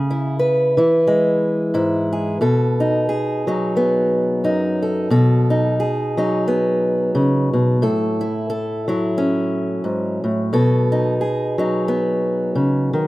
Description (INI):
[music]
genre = folk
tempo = 89 BPM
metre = 4/4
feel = swing 57% on 8ths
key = unclear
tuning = A4 = 440 Hz
[part]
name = fingerpicked acoustic archtop guitar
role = solo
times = 0.0-13.1 s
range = F#2 to B4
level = -16 LUFS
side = equal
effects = none
[sound]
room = light reverb, small room ambience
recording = rough home demo mix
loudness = -16 LUFS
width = side -18 dB against mid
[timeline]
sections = 0.0-13.1 A section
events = none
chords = 0.0 C#m; 2.4 B7; 7.8 F#m7/A; 10.5 B7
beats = 0.37 1.05 1.73 | 2.40 3.08 3.76 4.43 | 5.11 5.79 6.46 7.14 | 7.82 8.50 9.17 9.85 | 10.53 11.20 11.88 12.56